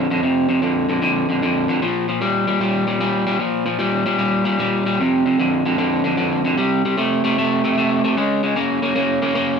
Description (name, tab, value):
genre	blues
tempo	151 BPM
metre	4/4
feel	swing 67% on 8ths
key	unclear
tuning	A4 = 440 Hz
part	electric guitar at the edge of break-up	solo	0.0-9.6 s	F2 to Bb3	-16 LUFS	equal	none
room	light reverb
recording	band playing live in one room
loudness	-16 LUFS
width	side -6 dB against mid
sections	0.0-9.6 A section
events	none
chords	0.0 F5; 1.8 Bb5; 5.0 F5; 6.6 C5; 8.2 Db5